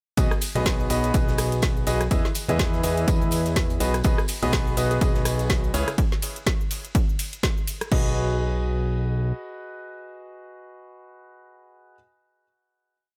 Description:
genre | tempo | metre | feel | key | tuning
piano house | 124 BPM | 4/4 | swing 57% on 16ths | B major | A4 = 440 Hz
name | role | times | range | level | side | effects
bright grand piano | riff | 0.2-11.9 s | C#3 to D#5 | -31 LUFS | equal | sidechain pumping, delay
fat analog bass | bass | 0.2-9.3 s | B1 to E2 | -28 LUFS | equal | sidechain pumping
damped 70s drum kit | drums | 0.2-5.9 s | hi-hat, snare drum, tambourine | -44 LUFS | equal | none
electronic kick drum | drums | 0.2-8.0 s | none | -26 LUFS | equal | overdrive
garage drum kit | drums | 0.2-8.0 s | crash cymbal, hi-hat, ride cymbal, rim click, shaker, snare drum | -32 LUFS | equal | none
tambourine and congas | percussion | 0.2-6.0 s | none | -39 LUFS | equal | none
soft struck synth lead | melody | 4.9-5.9 s | G#4 | -40 LUFS | equal | chorus, delay
room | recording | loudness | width
studio reverb | none | -24 LUFS | mono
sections
0.2-7.9 drop; 7.9-11.8 final chord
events
drop 0.2-7.9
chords
0.2 B6; 2.1 Emaj7; 3.8 B6; 5.7 N.C.; 7.9 B6

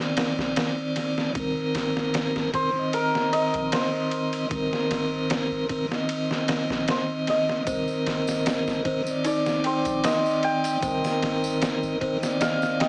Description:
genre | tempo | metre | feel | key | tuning
trip hop | 76 BPM | 4/4 | swing 54% on 16ths | C minor | A4 = 441 Hz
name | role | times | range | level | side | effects
hammered dulcimer | melody | 0.0-12.9 s | Bb4 to G5 | -27 LUFS | equal | tape echo
tonewheel organ | accompaniment | 0.0-12.9 s | Eb3 to Eb5 | -26 LUFS | equal | stopped rotary speaker, tremolo, tape echo
trip hop sampler-style drum kit | drums | 0.2-12.9 s | kick drum, ride cymbal, snare drum | -28 LUFS | equal | none
soft 808-style bass | bass | 0.4-12.0 s | G1 to C2 | -40 LUFS | equal | none
large celesta | arpeggios | 7.7-12.9 s | Eb4 to C6 | -30 LUFS | left 1 dB | tape echo
tambourine and triangle | percussion | 7.7-12.8 s | none | -40 LUFS | equal | none
room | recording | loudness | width
light reverb, studio reverb | small speaker sound | -22 LUFS | side -29 dB against mid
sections
0.0-12.9 A section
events
none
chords
0.0 Cm7

